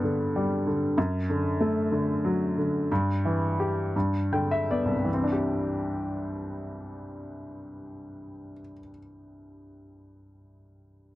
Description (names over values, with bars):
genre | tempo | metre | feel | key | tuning
pop | 50-64 BPM (dotted quarters) | 6/8 | straight | C major | A4 = 439 Hz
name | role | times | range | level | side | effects
clear baby grand piano | accompaniment | 0.0-11.2 s | C2 to G5 | -26 LUFS | equal | none
room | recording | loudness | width
moderate booth ambience, RT60 0.2 s | dry, close 1970s-style studio recording | -24 LUFS | side -16 dB against mid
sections
0.0-5.1 A section; 5.1-9.8 B section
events
slowing down 1.0-5.1; grand piano fill 3.9-5.1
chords
0.0 G; 1.0 D/F#; 2.9 Em/G; 3.9 G; 5.1 Cadd9